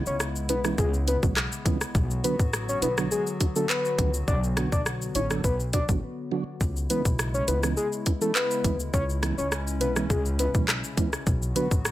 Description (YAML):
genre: dancehall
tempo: 103 BPM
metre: 4/4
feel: straight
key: unclear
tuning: A4 = 440 Hz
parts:
  - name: mellow tonewheel organ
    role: accompaniment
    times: 0.0-11.7 s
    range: D3 to A4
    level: -31 LUFS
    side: right 5 dB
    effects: chorus vibrato, fast rotary speaker
  - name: hollow soft pad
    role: sustained chords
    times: 0.0-11.9 s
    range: C#3 to F#4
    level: -35 LUFS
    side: left 1 dB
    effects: chorus, sidechain pumping
  - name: soft octave-layered synth lead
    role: melody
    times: 0.1-11.7 s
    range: G#4 to D5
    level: -29 LUFS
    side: left 2 dB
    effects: chorus, tape echo
  - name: upright bass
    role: bass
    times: 0.1-11.9 s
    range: A1 to D2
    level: -29 LUFS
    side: equal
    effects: none
  - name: island pop drum kit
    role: drums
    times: 0.1-11.9 s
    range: handclaps, hi-hat, kick drum, rim click, shaker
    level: -26 LUFS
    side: equal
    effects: none
room: digital ambience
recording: none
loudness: -23 LUFS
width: side -15 dB against mid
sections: 0.0-11.9 A section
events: break 6.0-6.6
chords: 0.0 C#m7; 1.9 Bm; 6.6 C#m7; 11.3 Bm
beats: 0.20 0.78 1.37 | 1.95 2.53 3.11 3.70 | 4.28 4.86 5.44 6.03 | 6.61 7.19 7.77 8.36 | 8.94 9.52 10.10 10.69 | 11.27 11.85